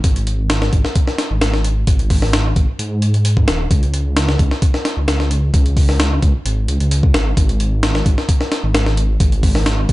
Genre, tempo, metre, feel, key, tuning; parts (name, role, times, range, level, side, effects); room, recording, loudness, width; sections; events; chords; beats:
breakbeat, breaks; 131 BPM; 4/4; straight; A4 = 443 Hz
dark detuned saw bass; bass; 0.0-9.9 s; D#1 to G#2; -16 LUFS; equal
breakbeat sampler-style drum kit; drums; 0.0-9.9 s; hi-hat, kick drum, snare drum; -16 LUFS; equal
little or no reverb; nothing above 10.9 kHz; -14 LUFS; side -18 dB against mid
0.0-9.9 A section
| 0.04 0.50 0.96 1.42 | 1.87 2.33 2.79 3.25 | 3.71 4.16 4.62 5.08 | 5.54 6.00 6.45 6.91 | 7.37 7.83 8.29 8.74 | 9.20 9.66